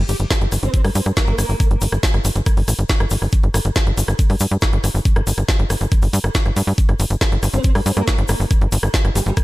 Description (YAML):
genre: psychedelic trance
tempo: 139 BPM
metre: 4/4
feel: straight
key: G minor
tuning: A4 = 440 Hz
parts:
  - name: tight sequencer bass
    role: bass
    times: 0.0-9.3 s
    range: G1 to G2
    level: -18 LUFS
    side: equal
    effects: none
  - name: drum and bass drum kit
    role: drums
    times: 0.1-9.4 s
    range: hi-hat, rim click, snare drum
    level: -24 LUFS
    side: equal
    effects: overdrive
  - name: egg shaker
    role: percussion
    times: 0.1-9.4 s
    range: none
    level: -31 LUFS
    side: left 5 dB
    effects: none
  - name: electronic kick drum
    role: drums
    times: 0.3-9.4 s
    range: none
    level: -16 LUFS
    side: equal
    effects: overdrive
  - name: formant-sweep wobble bass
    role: second line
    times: 0.6-1.6, 7.5-9.3 s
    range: G3 to C4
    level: -28 LUFS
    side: right 2 dB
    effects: analog chorus, sidechain pumping, high-pass filter, analog delay
room: little or no reverb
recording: none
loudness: -15 LUFS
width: side -19 dB against mid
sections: 0.0-9.4 A section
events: none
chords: 0.0 G5